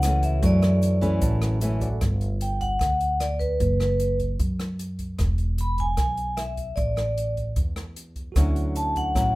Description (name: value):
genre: bossa nova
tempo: 151 BPM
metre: 4/4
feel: straight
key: D major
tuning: A4 = 440 Hz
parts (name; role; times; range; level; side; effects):
- vibraphone with medium hard mallets; melody; 0.0-9.4 s; B4 to B5; -26 LUFS; equal; plate reverb
- bell-like tine electric piano; accompaniment; 0.0-2.0, 8.3-9.4 s; F#4 to C#6; -38 LUFS; right 4 dB; medium stereo tremolo, plate reverb
- nylon-string guitar; accompaniment; 0.0-2.0, 8.4-9.4 s; F#2 to E4; -28 LUFS; left 1 dB; none
- upright bass; bass; 0.0-9.4 s; E1 to F#2; -24 LUFS; equal; none
- open jazz drum kit; drums; 0.0-9.2 s; hi-hat, kick drum, rim click; -29 LUFS; equal; none
- tube shaker; percussion; 0.0-2.0, 8.4-9.4 s; none; -47 LUFS; right 2 dB; none
room: light reverb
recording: rough home demo mix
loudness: -22 LUFS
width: side -19 dB against mid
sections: 0.0-2.0 A section; 2.0-9.4 B section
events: vibraphone solo 0.0-2.0; tine electric piano fill 0.8-2.0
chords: 0.4 Dmaj9/F#; 2.0 G5; 3.6 B5/F#; 5.2 E; 6.8 Asus4; 8.4 Dmaj9